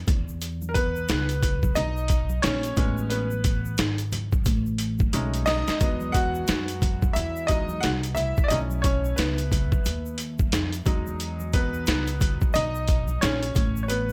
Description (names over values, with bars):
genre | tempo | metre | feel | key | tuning
hip hop, jazz-hop | 89 BPM | 4/4 | swing 61% on 16ths | E major | A4 = 440 Hz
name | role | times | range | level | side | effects
upright bass | bass | 0.0-14.1 s | G#1 to F#2 | -31 LUFS | equal | none
trip hop sampler-style drum kit | drums | 0.1-14.1 s | hi-hat, kick drum, snare drum | -27 LUFS | equal | none
congas and egg shaker | percussion | 0.1-14.1 s | none | -40 LUFS | equal | none
bright upright piano | accompaniment | 0.7-14.1 s | F#3 to F#5 | -30 LUFS | equal | none
room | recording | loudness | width
light reverb, small room ambience | none | -25 LUFS | mono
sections
0.0-14.1 A section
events
break 0.0-0.4; upright piano solo 0.0-14.1; drum fill 5.1-5.8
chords
0.1 E5; 2.8 Amaj9; 5.1 B13; 5.8 Emaj9; 8.5 B9sus4; 10.9 Emaj9; 13.6 Aadd9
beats
| 0.42 1.09 1.76 2.44 | 3.11 3.79 4.46 5.13 | 5.81 6.48 7.16 7.83 | 8.51 9.18 9.85 10.53 | 11.20 11.88 12.55 13.22 | 13.90